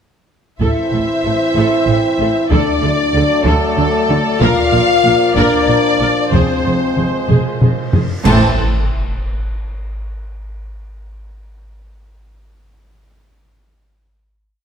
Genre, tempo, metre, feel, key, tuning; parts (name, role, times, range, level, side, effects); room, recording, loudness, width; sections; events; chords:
cinematic, epic orchestral film score; 63 BPM (dotted quarters); 6/8; straight; A4 = 442 Hz
warm symphonic violin section; melody; 0.6-8.6 s; A4 to A5; -22 LUFS; left 3 dB
rich symphonic violin section; second line; 0.6-8.6 s; A4 to A5; -20 LUFS; left 3 dB
rich symphonic viola section; accompaniment; 0.6-8.6 s; Ab4 to D5; -22 LUFS; equal
clear trombone section; sustained chords; 0.6-8.5 s; E3 to C4; -23 LUFS; right 3 dB
dark French horn section; sustained chords; 0.6-8.5 s; A3 to F4; -18 LUFS; left 3 dB
warm studio double bass section; bass; 0.6-8.6 s; F1 to D2; -21 LUFS; right 3 dB
warm symphonic cello section; bass; 0.6-8.6 s; F2 to D3; -20 LUFS; right 2 dB
taiko ensemble; drums; 0.6-8.2 s; -18 LUFS; equal
cymbal swell, clash cymbals and concert bass drum; percussion; 4.4-9.5 s; -23 LUFS; equal
reverse cymbal and sub drop; sound effects; 8.0-10.2 s; -27 LUFS; equal
moderate scoring stage reverb, RT60 2.0 s; -12 LUFS; side -7 dB against mid
0.6-8.3 theme; 8.3-10.2 final chord
drum fill 7.3-8.3; reverse cymbal 8.0; band accent 8.3-8.9; impact 8.3-10.2
0.6 Am; 2.5 D; 4.4 Bb; 6.3 Fm; 8.3 Am